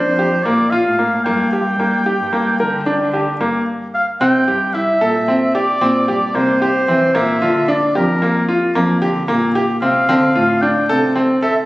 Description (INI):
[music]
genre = contemporary instrumental, chamber music in an uneven meter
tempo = 224 BPM (eighths)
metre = 11/8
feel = straight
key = G dorian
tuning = A4 = 440 Hz
[part]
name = warm oboe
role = melody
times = 0.0-11.5 s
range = Bb4 to G5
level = -18 LUFS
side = equal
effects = none
[part]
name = bright baby grand piano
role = arpeggios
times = 0.0-11.6 s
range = Bb3 to Bb4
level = -16 LUFS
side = equal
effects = none
[part]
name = muted cello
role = bass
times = 0.1-11.1 s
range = F2 to G3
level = -20 LUFS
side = equal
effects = none
[sound]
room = moderate concert hall reverb, RT60 2.1 s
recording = recorded on a phone in the room, studio reverb, compression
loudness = -13 LUFS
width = side -19 dB against mid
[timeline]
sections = 0.0-4.2 A section; 4.2-11.7 B section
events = stop 3.7-4.2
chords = 0.0 Bbadd9; 1.3 Gm; 4.2 C9; 7.2 Gm7; 10.1 Dm7